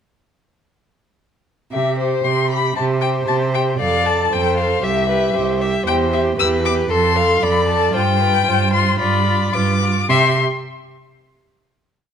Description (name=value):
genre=quick classical-period movement for string quartet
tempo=115 BPM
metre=4/4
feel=uneven beats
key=C major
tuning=A4 = 442 Hz
part: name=warm violin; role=melody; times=1.7-10.4 s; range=C5 to E6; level=-19 LUFS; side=left 7 dB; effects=none
part: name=rich viola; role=accompaniment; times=1.7-10.4 s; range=F4 to A4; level=-22 LUFS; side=right 3 dB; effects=none
part: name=clear cello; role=bass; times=1.7-10.4 s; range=C2 to C3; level=-20 LUFS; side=right 4 dB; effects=none
part: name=warm violin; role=second line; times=2.8-10.4 s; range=A4 to F5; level=-23 LUFS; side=left 3 dB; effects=none
room=moderate recital hall reverb, RT60 1.4 s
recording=none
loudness=-15 LUFS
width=side -8 dB against mid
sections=1.7-10.1 theme; 10.1-12.1 final chord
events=none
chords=1.7 C5; 3.8 F; 4.8 C; 5.9 C/E; 6.9 F; 7.9 G7sus4; 10.1 C5